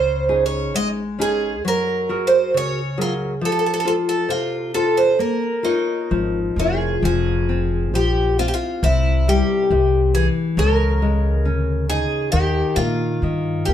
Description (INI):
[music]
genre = fado-style ballad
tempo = 67 BPM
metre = 2/4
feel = rubato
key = Bb minor, F minor from 7.0 s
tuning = A4 = 440 Hz
[part]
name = picked twelve-string acoustic guitar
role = melody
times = 0.0-13.7 s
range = Eb4 to Eb5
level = -20 LUFS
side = right 1 dB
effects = plate reverb
[part]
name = nylon-string guitar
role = accompaniment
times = 0.0-13.7 s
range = C3 to Db5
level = -23 LUFS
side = left 3 dB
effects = none
[part]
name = upright bass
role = bass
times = 0.0-13.7 s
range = F1 to Bb2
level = -21 LUFS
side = equal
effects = none
[sound]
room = moderate studio reverb, RT60 0.5 s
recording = heard from further back in the room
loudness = -17 LUFS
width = side -10 dB against mid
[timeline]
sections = 0.0-7.0 A section; 7.0-13.7 B section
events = none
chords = 0.0 Dbsus2; 1.6 Gbadd9; 3.4 F; 5.2 Bbm; 7.0 Fm; 8.8 C; 10.6 Dbsus2; 12.3 Ebadd9